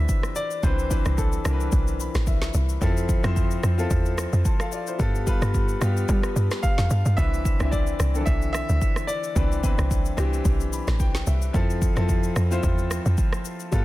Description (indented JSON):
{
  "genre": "amapiano",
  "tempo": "110 BPM",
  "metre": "4/4",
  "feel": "swing 55% on 16ths",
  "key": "C major",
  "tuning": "A4 = 440 Hz",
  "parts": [
    { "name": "clear grand piano", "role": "melody", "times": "0.0-1.7, 6.6-9.6 s", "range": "A4 to F5", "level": "-30 LUFS", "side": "equal", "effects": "digital delay" },
    { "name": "clear baby grand piano", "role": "accompaniment", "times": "0.0-13.8 s", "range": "D3 to B5", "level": "-29 LUFS", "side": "left 2 dB", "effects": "none" },
    { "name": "tight log drum bass", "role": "bass", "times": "0.0-13.8 s", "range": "A1 to G3", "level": "-24 LUFS", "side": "equal", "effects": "none" },
    { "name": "afro-pop drum kit", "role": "drums", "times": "0.1-13.8 s", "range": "kick drum, rim click, shaker, snare drum", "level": "-25 LUFS", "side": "equal", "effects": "soft clipping on snare" }
  ],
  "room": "digital ambience",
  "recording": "dense, heavily limited modern master",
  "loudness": "-21 LUFS",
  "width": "side -17 dB against mid",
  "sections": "0.0-13.8 A section",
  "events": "grand piano fill 1.7-2.8, 10.5-11.5",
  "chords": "0.0 Cmaj9; 2.8 Fmaj7; 5.0 G9; 7.2 Cmaj9; 11.5 Fmaj7",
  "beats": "0.09 | 0.63 1.18 1.73 2.27 | 2.82 3.36 3.91 4.45 | 5.00 5.54 6.09 6.63 | 7.18 7.72 8.27 8.82 | 9.36 9.91 10.45 11.00 | 11.54 12.09 12.63 13.18 | 13.72"
}